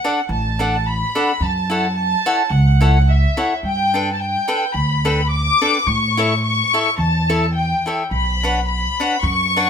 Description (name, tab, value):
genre	mexican folk, mariachi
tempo	107 BPM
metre	4/4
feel	swing 55% on 8ths, rubato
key	D major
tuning	A4 = 440 Hz
part	dark chamber violin section	melody	0.0-9.7 s	E5 to D6	-19 LUFS	left 1 dB	none
part	cavaquinho	accompaniment	0.0-9.7 s	D4 to G5	-20 LUFS	left 2 dB	none
part	upright bass	bass	0.3-9.7 s	A1 to A2	-18 LUFS	right 1 dB	none
room	moderate studio reverb, RT60 0.6 s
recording	minimal, uncompressed stereo recording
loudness	-15 LUFS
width	side -7 dB against mid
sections	0.0-9.7 A section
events	none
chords	0.0 D; 1.4 F#m7; 3.6 Gadd9; 5.9 A; 8.1 Bmadd9